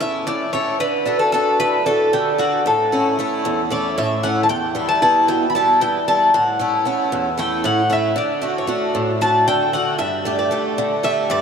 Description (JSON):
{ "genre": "greek folk, Greek bouzouki band", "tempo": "228 BPM (eighths)", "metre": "7/8", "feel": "straight", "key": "D major", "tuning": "A4 = 439 Hz", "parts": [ { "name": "Greek bouzouki", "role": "melody", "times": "0.0-11.4 s", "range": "F#4 to B5", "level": "-18 LUFS", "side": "left 1 dB", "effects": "diffuse ambient delay" }, { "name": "picked swing-style acoustic guitar", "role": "accompaniment", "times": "0.0-11.4 s", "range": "E2 to A4", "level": "-20 LUFS", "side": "right 1 dB", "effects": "wide subtle chorus" } ], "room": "wet huge ambient reverb, RT60 4.7 s", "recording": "dreamy mix soaked in reverb", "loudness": "-16 LUFS", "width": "side -6 dB against mid", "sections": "0.8-11.4 A section", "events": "none", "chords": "0.0 A; 0.8 D; 2.7 A; 4.5 Em; 6.3 A; 8.2 D; 10.0 Gsus2" }